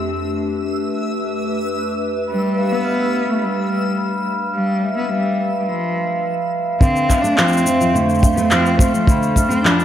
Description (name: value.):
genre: folktronica.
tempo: 106 BPM.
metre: 4/4.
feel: straight.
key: F lydian.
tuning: A4 = 436 Hz.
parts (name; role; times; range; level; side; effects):
warbly tape-like pad; sustained chords; 0.0-9.8 s; F2 to B4; -25 LUFS; left 1 dB; chorus, built-in reverb, phaser.
backwards swelling texture; texture; 0.0-9.8 s; E5 to G6; -31 LUFS; equal; built-in reverb, analog chorus.
dark cello; melody; 2.3-9.8 s; F3 to D4; -20 LUFS; equal; vintage 12-bit sampler grit, diffuse ambient delay.
vibraphone with soft mallets; second line; 2.3-9.8 s; B4 to F6; -21 LUFS; equal; diffuse ambient delay.
fingerpicked steel-string acoustic guitar; arpeggios; 6.8-9.8 s; D3 to D4; -20 LUFS; equal; none.
electronic shaker and handclaps; drums; 6.8-9.8 s; none; -21 LUFS; equal; overdrive, low-pass filter on perc, low-pass filter on snare, low-pass filter on hats, low-pass filter on room.
kick drum; drums; 6.8-9.5 s; none; -14 LUFS; equal; none.
room: wet lush hall reverb, RT60 2.4 s.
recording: dreamy mix soaked in reverb.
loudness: -16 LUFS.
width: side -10 dB against mid.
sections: 0.0-6.8 A section; 6.8-9.8 B section.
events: none.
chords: 0.0 F6; 2.3 G7; 6.8 F6.